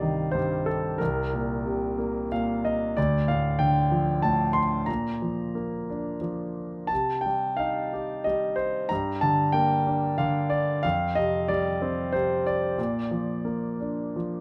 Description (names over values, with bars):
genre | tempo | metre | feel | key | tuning
classical, lyrical solo piano | 92 BPM | 3/4 | uneven beats, rubato | C dorian | A4 = 440 Hz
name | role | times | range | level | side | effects
clear concert grand piano | solo | 0.0-14.4 s | C2 to C6 | -26 LUFS | equal | none
room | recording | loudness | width
light reverb | none | -26 LUFS | mono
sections
0.0-14.4 A section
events
grand piano fill 2.0-3.0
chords
0.0 Cm; 1.0 Cm7; 3.0 Dm; 4.9 Bb; 6.9 Cm; 8.9 Gm; 10.8 Fsus2; 12.8 Bb